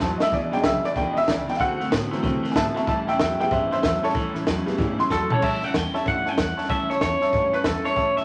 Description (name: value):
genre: rockabilly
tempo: 188 BPM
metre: 4/4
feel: swing 63% on 8ths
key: A mixolydian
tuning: A4 = 440 Hz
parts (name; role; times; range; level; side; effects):
- picked steel-string acoustic guitar; accompaniment; 0.0-8.2 s; E2 to F#4; -33 LUFS; equal; none
- warm upright piano; accompaniment; 0.0-8.2 s; C#3 to C6; -27 LUFS; equal; none
- electric guitar at the edge of break-up; riff; 0.0-5.4 s; E2 to B3; -33 LUFS; equal; none
- upright bass; bass; 0.0-8.2 s; E1 to C3; -36 LUFS; equal; none
- compact cocktail drum kit; drums; 0.0-8.2 s; crash cymbal, hi-hat, kick drum, snare drum, toms; -29 LUFS; equal; none
- electric guitar through a small old amp; melody; 5.1-8.2 s; A4 to G5; -26 LUFS; equal; none
room: wet large studio reverb, RT60 1.1 s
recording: vinyl crackle, nothing above 10.4 kHz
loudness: -23 LUFS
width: mono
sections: 0.0-5.4 A section; 5.4-8.2 B section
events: upright piano solo 0.0-5.4; drum fill 0.0-0.3, 5.1-5.4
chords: 0.3 E7; 1.6 D7; 2.9 A7